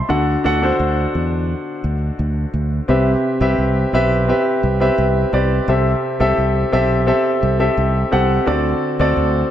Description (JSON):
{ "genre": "1980s-style pop", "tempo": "86 BPM", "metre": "4/4", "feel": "straight", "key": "unclear", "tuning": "A4 = 441 Hz", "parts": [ { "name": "clear baby grand piano", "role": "accompaniment", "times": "0.0-9.5 s", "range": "C3 to C6", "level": "-17 LUFS", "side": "equal", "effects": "none" }, { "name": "fretless electric bass", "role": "bass", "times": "0.1-9.4 s", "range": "B1 to E2", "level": "-19 LUFS", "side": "equal", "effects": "wide subtle chorus" } ], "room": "moderate lush hall reverb, RT60 2.4 s", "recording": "none", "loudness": "-15 LUFS", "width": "side -10 dB against mid", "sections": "0.0-2.9 A section; 2.9-9.5 B section", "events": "none", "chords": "0.1 D; 2.9 Cmaj7; 5.7 Am7; 8.5 D7" }